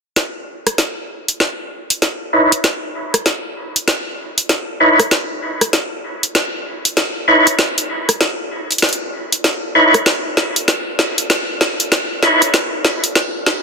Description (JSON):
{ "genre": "glitch hop", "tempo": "97 BPM", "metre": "4/4", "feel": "swing 62% on 16ths", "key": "C# minor", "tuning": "A4 = 440 Hz", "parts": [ { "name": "drum and bass drum kit", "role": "drums", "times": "0.2-13.6 s", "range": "hi-hat, rim click, snare drum", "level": "-16 LUFS", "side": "equal", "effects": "overdrive" }, { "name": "percussive tonewheel organ", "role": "stabs", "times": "2.3-12.4 s", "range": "D#4 to C#5", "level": "-15 LUFS", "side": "equal", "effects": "overdrive, fast rotary speaker, low-pass filter, tape echo" } ], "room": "wet plate reverb, RT60 2.0 s", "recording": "dense, heavily limited modern master, high-pass filter", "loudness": "-14 LUFS", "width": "side -4 dB against mid", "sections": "0.2-13.6 A section", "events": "build-up 0.2-13.6; drum fill 0.2-13.6; filter sweep on tonewheel organ 0.2-13.6", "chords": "0.2 C#m9", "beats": "| 0.17 0.78 1.40 2.02 | 2.64 3.26 3.88 4.49 | 5.11 5.73 6.35 6.97 | 7.59 8.21 8.82 9.44 | 10.06 10.68 11.30 11.92 | 12.54 13.15" }